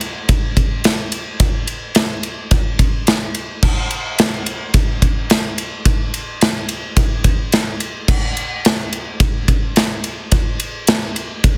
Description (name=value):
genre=rock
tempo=108 BPM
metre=4/4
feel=straight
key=none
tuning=none
part: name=big rock drum kit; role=drums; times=0.0-11.6 s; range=crash cymbal, kick drum, ride cymbal, snare drum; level=-18 LUFS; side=equal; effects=soft clipping on snare
room=light reverb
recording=dense, heavily limited modern master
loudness=-18 LUFS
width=mono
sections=0.0-11.6 A section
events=none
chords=none